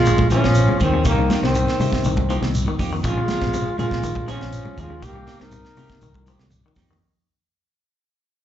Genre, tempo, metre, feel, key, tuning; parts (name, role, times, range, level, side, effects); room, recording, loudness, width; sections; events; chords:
afrobeat; 121 BPM; 4/4; straight; A4 = 440 Hz
bright trombone; melody; 0.0-6.4 s; Bb3 to Bb4; -24 LUFS; equal; slapback echo
clear alto saxophone; second line; 0.0-6.4 s; Eb3 to Eb4; -27 LUFS; right 4 dB; slapback echo
barky reed electric piano; accompaniment; 0.0-2.8 s; Db3 to C4; -32 LUFS; left 2 dB
fingered electric bass; bass; 0.0-7.0 s; Bb1 to C3; -22 LUFS; equal
twangy electric guitar; arpeggios; 0.1-7.0 s; C3 to F3; -28 LUFS; left 7 dB; slapback echo
tight funk drum kit; drums; 0.1-6.9 s; hi-hat, kick drum, snare drum; -26 LUFS; right 1 dB
shekere; percussion; 0.1-6.9 s; -28 LUFS; equal
congas; percussion; 0.2-7.0 s; -28 LUFS; left 1 dB; slapback echo
clean electric guitar; stabs; 0.3-6.9 s; F3 to Ab4; -30 LUFS; right 6 dB; tremolo, slapback echo
light reverb; live gig heard through the venue's PA, club reverb, nothing above 7.9 kHz; -17 LUFS; side -11 dB against mid
0.0-7.0 A section
fade-out 0.0-7.0; drum fill 6.3-7.0
0.0 Bbm9; 1.1 Cm7; 3.0 Bbm9; 5.0 Cm7